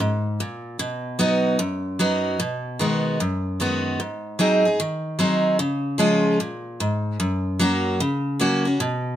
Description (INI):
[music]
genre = country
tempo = 150 BPM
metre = 4/4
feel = swing 65% on 8ths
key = B major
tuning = A4 = 445 Hz
[part]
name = picked steel-string acoustic guitar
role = solo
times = 0.0-9.2 s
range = F#2 to G#4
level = -20 LUFS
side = equal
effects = none
[sound]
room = light reverb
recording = close, detailed microphones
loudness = -20 LUFS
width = side -11 dB against mid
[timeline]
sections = 0.0-2.4 A section; 2.4-9.2 B section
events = none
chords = 0.0 N.C.; 0.8 B; 2.4 B6; 4.0 G#7; 5.6 C#; 7.2 F#